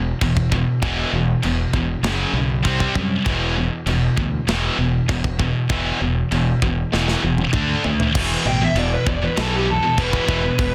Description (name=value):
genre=heavy metal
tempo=98 BPM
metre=4/4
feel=straight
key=E minor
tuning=A4 = 440 Hz
part: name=scooped high-gain guitar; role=riff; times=0.0-10.7 s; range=E2 to D4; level=-26 LUFS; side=equal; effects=distortion
part: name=tight distorted guitar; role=riff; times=0.0-10.7 s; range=E2 to D4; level=-26 LUFS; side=equal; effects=distortion
part: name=growling fingered electric bass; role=bass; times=0.0-10.7 s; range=E1 to F#2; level=-26 LUFS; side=equal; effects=overdrive
part: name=tight metal drum kit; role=drums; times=0.2-10.7 s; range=china cymbal, crash cymbal, kick drum, snare drum, toms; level=-27 LUFS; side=equal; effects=soft clipping on kick
part: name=bluesy overdriven lead guitar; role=melody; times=8.5-10.7 s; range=G4 to G5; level=-25 LUFS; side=equal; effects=distortion
room=light reverb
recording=dense, heavily limited modern master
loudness=-20 LUFS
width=mono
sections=0.0-8.1 A section; 8.1-10.7 B section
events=drum fill 6.9-8.1; lead electric guitar solo 8.1-10.7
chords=0.0 E5; 2.0 F#5; 2.6 C5; 3.3 E5; 7.5 D5; 8.1 E5